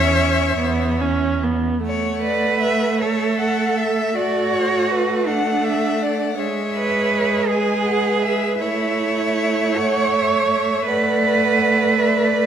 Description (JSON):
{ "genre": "classical, slow romantic movement for string quartet", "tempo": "53 BPM (dotted quarters)", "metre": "6/8", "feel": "uneven beats, rubato", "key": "unclear", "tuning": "A4 = 440 Hz", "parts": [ { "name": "warm violin", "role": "melody", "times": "0.0-12.5 s", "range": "D5 to G#5", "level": "-28 LUFS", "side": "left 7 dB", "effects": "none" }, { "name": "warm violin", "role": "second line", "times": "0.0-12.5 s", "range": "B4 to F#5", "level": "-23 LUFS", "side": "left 4 dB", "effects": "none" }, { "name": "rich viola", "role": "accompaniment", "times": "0.0-12.5 s", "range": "G#3 to C#4", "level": "-22 LUFS", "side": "right 3 dB", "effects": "none" }, { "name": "rich cello", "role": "bass", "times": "0.0-12.5 s", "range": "E2 to C#5", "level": "-20 LUFS", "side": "right 4 dB", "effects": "none" } ], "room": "wet scoring stage reverb, RT60 1.6 s", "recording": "none", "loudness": "-17 LUFS", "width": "side -8 dB against mid", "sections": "0.0-1.8 A section; 1.8-12.5 B section", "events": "none", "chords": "0.0 C#m/E; 0.6 E5; 1.8 Bm7/A; 6.4 E/G#; 8.6 A; 10.9 E5/A" }